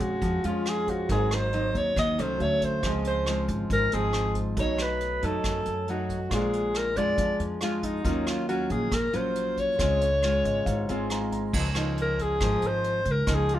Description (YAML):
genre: bossa nova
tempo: 138 BPM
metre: 4/4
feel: straight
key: Db major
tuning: A4 = 441 Hz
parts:
  - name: breathy alto saxophone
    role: melody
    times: 0.0-13.6 s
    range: Eb4 to Eb5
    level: -27 LUFS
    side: equal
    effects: none
  - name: nylon-string guitar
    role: accompaniment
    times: 0.0-13.6 s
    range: Gb2 to F4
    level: -30 LUFS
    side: left 1 dB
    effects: none
  - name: warm concert grand piano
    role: accompaniment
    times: 0.0-11.6 s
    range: Db4 to C6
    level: -38 LUFS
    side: right 4 dB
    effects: none
  - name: upright bass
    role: bass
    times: 0.0-13.6 s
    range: Ab1 to Gb2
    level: -30 LUFS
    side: equal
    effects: none
  - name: vintage brush drum kit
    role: drums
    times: 0.0-13.6 s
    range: crash cymbal, hi-hat, kick drum, rim click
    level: -33 LUFS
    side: equal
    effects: none
room: light reverb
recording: none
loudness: -24 LUFS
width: side -12 dB against mid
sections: 0.0-11.5 A section; 11.5-13.6 B section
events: grand piano fill 10.2-11.5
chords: 0.0 Bbm7; 1.1 Ab7; 2.4 Dmaj7; 2.8 Dbmaj7; 4.6 Cb7; 6.3 Bb7; 8.1 Ebm9; 9.8 Dbmaj7; 11.5 Db69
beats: 0.22 0.65 | 1.09 1.52 1.96 2.39 | 2.83 3.26 3.70 4.13 | 4.57 5.00 5.44 5.87 | 6.31 6.75 7.18 7.62 | 8.05 8.49 8.92 9.36 | 9.79 10.23 10.66 11.10 | 11.53 11.97 12.40 12.84 | 13.28